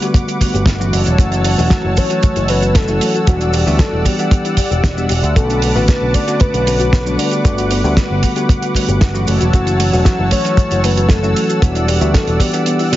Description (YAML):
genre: nu-disco, nu disco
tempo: 115 BPM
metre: 4/4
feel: straight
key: unclear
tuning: A4 = 439 Hz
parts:
  - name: bell-like tine electric piano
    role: accompaniment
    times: 0.0-12.9 s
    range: D3 to F#5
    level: -19 LUFS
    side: equal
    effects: sidechain pumping, tape echo
  - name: lush unison pad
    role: sustained chords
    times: 0.0-13.0 s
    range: B4 to E6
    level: -22 LUFS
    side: equal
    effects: chorus, sidechain pumping
  - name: soft round pluck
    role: arpeggios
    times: 0.0-13.0 s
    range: A3 to D5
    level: -26 LUFS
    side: left 4 dB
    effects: none
  - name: damped 70s drum kit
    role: drums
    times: 0.0-13.0 s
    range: hi-hat, shaker, snare drum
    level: -21 LUFS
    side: right 2 dB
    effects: none
  - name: kick drum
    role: drums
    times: 0.1-12.5 s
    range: none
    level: -13 LUFS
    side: equal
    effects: none
  - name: picked electric bass with an envelope filter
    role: bass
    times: 0.5-12.4 s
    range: E1 to D2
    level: -17 LUFS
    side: equal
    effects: none
  - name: soft octave-layered synth lead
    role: melody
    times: 1.2-13.0 s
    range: F#4 to D5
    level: -21 LUFS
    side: left 1 dB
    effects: chorus, digital delay
room: light reverb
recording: heavily compressed radio sound, multiband compression, nothing above 7.5 kHz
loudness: -12 LUFS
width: side -14 dB against mid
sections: 0.0-13.0 A section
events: kick drops out 12.7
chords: 0.0 Gmaj7; 0.9 F#m7; 3.3 Em9; 5.4 Bm7; 7.2 Gmaj7; 9.3 F#m7; 11.6 Em9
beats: 0.14 0.67 | 1.19 1.71 2.23 2.75 | 3.28 3.80 4.32 4.84 | 5.36 5.88 6.41 6.93 | 7.45 7.97 8.49 9.02 | 9.54 10.06 10.58 11.10 | 11.62 12.14 12.67